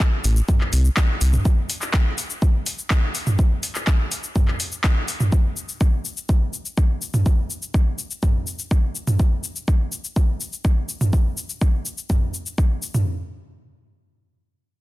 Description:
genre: melodic techno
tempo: 124 BPM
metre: 4/4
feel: straight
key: A minor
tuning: A4 = 442 Hz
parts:
  - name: deep house drum kit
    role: drums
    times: 0.0-13.0 s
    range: handclaps, hi-hat, shaker, toms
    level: -25 LUFS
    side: equal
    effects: overdrive, sidechain pumping on perc, sidechain pumping on hats, sidechain pumping on toms
  - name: electronic kick drum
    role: drums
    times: 0.0-12.7 s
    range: none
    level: -19 LUFS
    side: equal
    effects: overdrive
  - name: round analog bass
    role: bass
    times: 0.2-1.4 s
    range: A1 to C2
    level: -16 LUFS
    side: equal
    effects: sidechain pumping
room: little or no reverb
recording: dense, heavily limited modern master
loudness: -19 LUFS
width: side -18 dB against mid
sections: 0.0-13.1 A section; 13.1-14.8 B section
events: none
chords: none

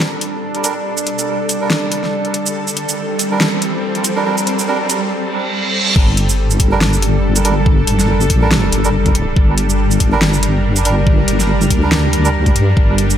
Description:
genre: deep dubstep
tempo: 141 BPM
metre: 4/4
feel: swing 56% on 16ths, half-time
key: G minor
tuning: A4 = 440 Hz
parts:
  - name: bowed-like drone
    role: sustained chords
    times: 0.0-13.2 s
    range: G3 to Bb4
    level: -18 LUFS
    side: equal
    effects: built-in reverb
  - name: deep house drum kit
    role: drums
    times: 0.0-13.2 s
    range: crash cymbal, hi-hat, shaker, snare drum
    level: -19 LUFS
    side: equal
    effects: overdrive
  - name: riser and reverse cymbal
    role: sound effects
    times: 2.7-6.0 s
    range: none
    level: -23 LUFS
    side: right 3 dB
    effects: none
  - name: melodica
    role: stabs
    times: 0.6-12.3 s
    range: G3 to Bb4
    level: -22 LUFS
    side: right 4 dB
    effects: dub echo
  - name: deep soft wobble bass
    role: bass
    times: 6.0-13.2 s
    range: G1 to G2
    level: -15 LUFS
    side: equal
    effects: chorus
  - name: electronic kick drum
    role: drums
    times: 6.0-12.9 s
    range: none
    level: -13 LUFS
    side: equal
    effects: overdrive
room: moderate lush hall reverb, RT60 1.7 s, digital ambience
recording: dreamy mix soaked in reverb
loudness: -12 LUFS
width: side -10 dB against mid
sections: 0.0-6.0 A section; 6.0-13.2 B section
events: build-up 0.0-6.0; riser 2.7-5.1; reverse cymbal 5.1-6.0; drop 6.0-13.2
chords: 0.0 G5; 6.0 Gm

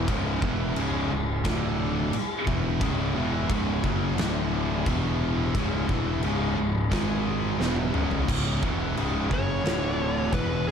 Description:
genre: stoner and doom metal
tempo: 88 BPM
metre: 4/4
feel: straight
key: C# minor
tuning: A4 = 440 Hz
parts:
  - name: thick fuzz guitar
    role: riff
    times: 0.0-10.7 s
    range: C#2 to G#3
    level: -32 LUFS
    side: left 8 dB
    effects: distortion
  - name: thick fuzz guitar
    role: riff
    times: 0.0-10.7 s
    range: C#2 to G#3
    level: -31 LUFS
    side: right 10 dB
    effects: distortion
  - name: tight distorted guitar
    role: riff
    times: 0.0-10.7 s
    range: C#2 to G#3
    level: -31 LUFS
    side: left 1 dB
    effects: distortion
  - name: fuzz picked electric bass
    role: bass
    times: 0.0-10.7 s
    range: C#1 to G#1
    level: -31 LUFS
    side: equal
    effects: overdrive
  - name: oversized low-tuned drum kit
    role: drums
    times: 0.1-10.7 s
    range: crash cymbal, kick drum, snare drum, toms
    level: -29 LUFS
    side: equal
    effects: none
  - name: fuzz lead guitar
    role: melody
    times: 9.3-10.7 s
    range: G#4 to C#5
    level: -30 LUFS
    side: left 1 dB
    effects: distortion
room: light reverb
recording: none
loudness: -24 LUFS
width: side -7 dB against mid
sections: 0.0-8.3 A section; 8.3-10.7 B section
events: drum fill 7.6-8.3; lead electric guitar solo 8.3-10.7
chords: 0.1 C#m; 1.5 D5; 2.1 C#m; 4.2 D5; 4.9 E5; 5.5 C#m; 6.9 G#5; 7.6 C#m; 9.6 D5

